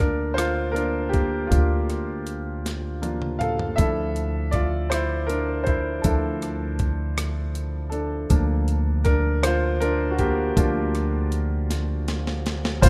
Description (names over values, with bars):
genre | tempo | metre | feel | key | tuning
six-eight pop ballad | 53 BPM (dotted quarters) | 6/8 | straight | unclear | A4 = 442 Hz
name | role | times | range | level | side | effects
clear concert grand piano | accompaniment | 0.0-12.9 s | F3 to F5 | -28 LUFS | equal | none
upright bass | bass | 0.0-12.9 s | Bb1 to D2 | -27 LUFS | equal | none
breakbeat sampler-style drum kit | drums | 0.0-12.9 s | crash cymbal, hi-hat, kick drum, rim click, snare drum, toms | -27 LUFS | equal | none
room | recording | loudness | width
digital ambience | rough home demo mix, lossy compression artefacts | -24 LUFS | mono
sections
0.0-12.8 A section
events
grand piano solo 0.0-12.8; drum fill 2.6-3.8, 11.7-12.8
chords
0.0 Bb/D; 3.8 Dmadd9; 8.3 Bb/D